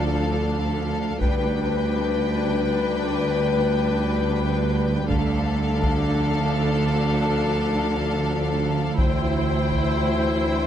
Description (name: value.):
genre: cinematic, epic orchestral film score.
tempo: free time.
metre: none.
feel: none.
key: D dorian.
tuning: A4 = 440 Hz.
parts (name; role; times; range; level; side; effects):
rich studio violin section; melody; 0.0-10.7 s; F5 to G5; -33 LUFS; left 4 dB; none.
rich symphonic violin section; second line; 0.0-10.7 s; A4 to C5; -30 LUFS; left 3 dB; none.
dark symphonic viola section; accompaniment; 0.0-10.7 s; D4 to E4; -30 LUFS; equal; none.
mellow French horn section; sustained chords; 0.0-10.7 s; E3 to C5; -27 LUFS; left 5 dB; none.
clear symphonic double bass section; bass; 0.0-10.7 s; D2; -27 LUFS; right 3 dB; none.
rich studio cello section; bass; 0.0-10.7 s; D2; -25 LUFS; right 2 dB; none.
taiko ensemble; drums; 1.2-2.1, 5.1-6.1, 9.0-9.9 s; none; -26 LUFS; equal; none.
room: moderate scoring stage reverb, RT60 2.0 s.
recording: none.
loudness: -20 LUFS.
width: side -10 dB against mid.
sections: 0.0-10.7 A section.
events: build-up 0.0-10.7.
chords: 0.0 Dm; 1.2 G/D; 5.1 Dm; 9.0 C/D.